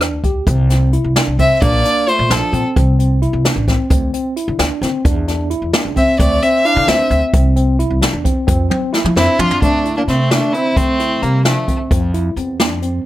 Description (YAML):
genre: progressive instrumental, band music in an uneven meter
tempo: 262 BPM (eighths)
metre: 5/8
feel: straight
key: unclear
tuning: A4 = 440 Hz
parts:
  - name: bright tine electric piano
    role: arpeggios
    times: 0.0-13.0 s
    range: C4 to G4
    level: -21 LUFS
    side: equal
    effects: slow stereo tremolo
  - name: upright bass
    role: bass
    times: 0.0-13.0 s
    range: A1 to F3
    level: -17 LUFS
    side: equal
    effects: none
  - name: jazz brush drum kit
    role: drums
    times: 0.0-12.9 s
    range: hi-hat, kick drum, rim click, snare drum, toms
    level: -17 LUFS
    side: equal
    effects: none
  - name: clear violin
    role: melody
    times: 1.4-2.7, 6.0-11.8 s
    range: A3 to F5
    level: -16 LUFS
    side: left 1 dB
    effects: none
  - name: breathy alto saxophone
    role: second line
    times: 1.4-2.7, 6.0-11.8 s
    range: F3 to D4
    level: -21 LUFS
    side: right 3 dB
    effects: plate reverb
room: light reverb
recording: none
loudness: -12 LUFS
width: side -14 dB against mid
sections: 0.5-9.6 A section; 9.6-13.1 B section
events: drum fill 8.7-9.6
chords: 0.5 C; 1.6 Bb; 2.8 C; 3.9 Dsus2; 5.0 Dbmmaj7; 6.2 Dsus2; 7.3 C; 8.5 F5; 9.6 Dsus2; 11.9 F5